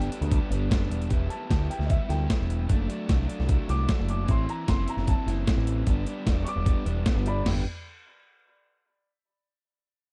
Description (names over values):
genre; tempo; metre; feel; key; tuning
indie rock; 151 BPM; 4/4; straight; G major; A4 = 440 Hz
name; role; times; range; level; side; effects
dark upright piano; melody; 0.0-7.5 s; D5 to D6; -38 LUFS; equal; plate reverb
crunchy overdriven guitar; riff; 0.0-7.6 s; E3 to G4; -35 LUFS; equal; none
growling picked electric bass; bass; 0.0-7.6 s; E1 to D2; -30 LUFS; equal; overdrive
dusty soul sampler-style drum kit; drums; 0.0-7.6 s; crash cymbal, hi-hat, kick drum, snare drum, toms; -28 LUFS; equal; overdrive
room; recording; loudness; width
little or no reverb; dark, warm production; -26 LUFS; mono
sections
0.0-1.1 A section; 1.1-7.5 B section; 7.5-9.0 C section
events
upright piano solo 1.1-7.5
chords
0.0 G; 1.1 Em; 2.7 D/F#; 4.3 Am; 5.9 G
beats
0.31 0.71 | 1.11 1.50 1.90 2.30 | 2.70 3.09 3.49 3.89 | 4.29 4.68 5.08 5.48 | 5.87 6.27 6.67 7.06 | 7.46